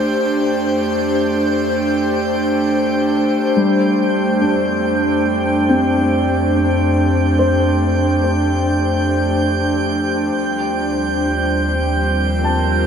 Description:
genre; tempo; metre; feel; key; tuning
ambient; 71 BPM; 4/4; straight; F mixolydian; A4 = 441 Hz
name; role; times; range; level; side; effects
airy breathy pad; sustained chords; 0.0-12.9 s; G3 to C5; -17 LUFS; equal; chorus
felt-muted upright piano; arpeggios; 0.0-12.9 s; G3 to A5; -21 LUFS; left 2 dB; ping-pong delay
warm sub bass; bass; 0.0-12.9 s; Eb2 to F2; -22 LUFS; equal; none
drifting glass-harmonics texture; texture; 0.0-12.9 s; G5 to G6; -23 LUFS; right 2 dB; chorus, built-in reverb
analog drone; drone; 9.7-12.9 s; F3; -35 LUFS; equal; none
room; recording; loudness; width
wet huge ambient reverb, RT60 8.8 s; none; -14 LUFS; side -7 dB against mid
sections
0.0-3.6 A section; 3.6-12.9 B section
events
fade-out on sub bass 0.0-3.6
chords
0.2 F; 10.3 Cm7/Eb

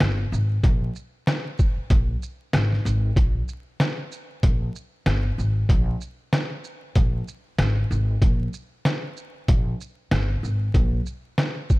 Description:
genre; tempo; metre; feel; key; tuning
hip hop, boom-bap hip-hop; 95 BPM; 4/4; swing 60% on 16ths; unclear; A4 = 441 Hz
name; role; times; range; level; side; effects
upright bass; bass; 0.0-11.0 s; G1 to Bb1; -23 LUFS; equal; none
trip hop sampler-style drum kit; drums; 0.0-11.8 s; hi-hat, kick drum, rim click, shaker, snare drum; -21 LUFS; equal; none
room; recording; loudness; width
little or no reverb; vinyl crackle; -21 LUFS; side -22 dB against mid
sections
0.0-11.8 A section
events
none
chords
none

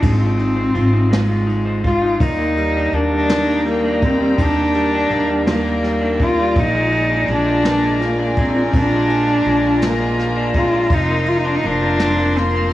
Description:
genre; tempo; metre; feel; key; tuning
six-eight pop ballad; 55 BPM (dotted quarters); 6/8; straight; Eb major; A4 = 440 Hz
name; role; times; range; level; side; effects
dark cello; melody; 0.0-12.7 s; Ab3 to F4; -18 LUFS; equal; digital delay
electric guitar through a small old amp; accompaniment; 0.0-12.7 s; F2 to C5; -22 LUFS; equal; none
upright bass; bass; 0.0-12.7 s; F1 to Eb2; -22 LUFS; equal; none
jazz brush drum kit; drums; 0.0-12.7 s; kick drum, ride cymbal, snare drum; -22 LUFS; equal; none
warm studio string section; sustained chords; 2.2-12.7 s; Eb3 to C6; -24 LUFS; left 2 dB; none
room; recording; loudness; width
light reverb, small room reverb; worn, warbling old tape, cassette tape, warbly pitch drift, small room ambience; -14 LUFS; side -14 dB against mid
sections
0.0-12.7 A section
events
none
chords
0.0 Ab6; 2.2 Ebmaj7; 6.6 Bb7; 10.9 Fsus4

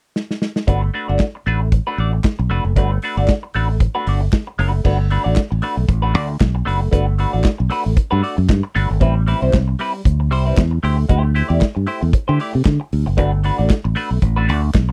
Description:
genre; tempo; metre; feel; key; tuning
disco; 115 BPM; 4/4; swing 56% on 16ths; unclear; A4 = 439 Hz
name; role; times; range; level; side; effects
modern studio drum kit; drums; 0.2-14.9 s; crash cymbal, handclaps, hi-hat, kick drum, snare drum; -18 LUFS; equal; none
clean electric guitar; accompaniment; 0.7-14.9 s; G3 to D5; -24 LUFS; equal; wah
fingered electric bass; bass; 0.7-14.9 s; F1 to D3; -19 LUFS; equal; none
room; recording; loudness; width
little or no reverb; dry, close 1970s-style studio recording; -18 LUFS; mono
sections
0.7-4.8 A section; 4.8-14.9 B section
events
drum fill 0.2-0.7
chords
0.0 N.C.; 0.7 Gmaj9; 9.0 Am9; 10.8 D9sus4; 13.2 Gmaj9

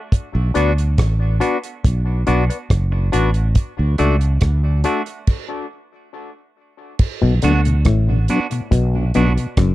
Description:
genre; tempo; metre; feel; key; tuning
dub reggae; 70 BPM; 4/4; straight; B minor; A4 = 436 Hz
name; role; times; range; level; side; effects
damped 70s drum kit; drums; 0.1-9.7 s; crash cymbal, hi-hat, kick drum, rim click; -17 LUFS; equal; none
fretless electric bass; bass; 0.3-9.7 s; F#1 to D2; -16 LUFS; equal; none
percussive organ stab; stabs; 0.5-5.0 s; D4 to D5; -24 LUFS; left 6 dB; chorus, tape echo
clean electric guitar; accompaniment; 0.6-9.3 s; A3 to F#4; -26 LUFS; right 6 dB; spring reverb, tape echo
mellow tonewheel organ; accompaniment; 7.2-9.5 s; B2 to D4; -22 LUFS; left 2 dB; chorus vibrato, tape echo
auto-wah clav; riff; 7.2-9.7 s; F#2 to D3; -21 LUFS; left 4 dB; tape echo
room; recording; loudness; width
little or no reverb; dry, close 1970s-style studio recording; -15 LUFS; side -16 dB against mid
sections
0.0-7.0 A section; 7.0-9.7 B section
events
stop 5.3-7.0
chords
0.1 Bm; 3.6 D; 7.0 Bm

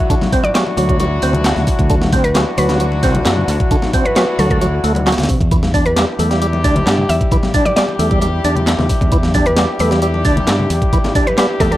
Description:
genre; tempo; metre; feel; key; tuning
breakbeat, breaks; 133 BPM; 4/4; straight; E minor; A4 = 439 Hz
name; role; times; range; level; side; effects
dark horn section; stabs; 0.0-11.8 s; F#3 to G4; -21 LUFS; left 2 dB; vintage 12-bit sampler grit, analog delay
percussive tonewheel organ; riff; 0.1-11.8 s; C3 to D4; -19 LUFS; right 1 dB; overdrive, chorus vibrato, stopped rotary speaker, tube saturation, analog delay
breakbeat sampler-style drum kit; drums; 0.1-11.8 s; hi-hat, kick drum, snare drum; -17 LUFS; equal; overdrive
garage drum kit; drums; 0.1-11.8 s; handclaps, hi-hat; -24 LUFS; equal; none
congas; percussion; 0.1-11.7 s; none; -24 LUFS; left 2 dB; none
mallet-like synth pluck; melody; 0.4-11.8 s; A4 to E5; -20 LUFS; equal; chorus, telephone sound, cassette tape, analog delay
fingered electric bass; bass; 0.8-11.8 s; C2 to G2; -18 LUFS; equal; none
room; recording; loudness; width
light reverb, digital ambience; dry, gritty hardware recording; -12 LUFS; side -14 dB against mid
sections
0.0-11.8 A section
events
none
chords
0.0 Dadd9; 5.5 Em7

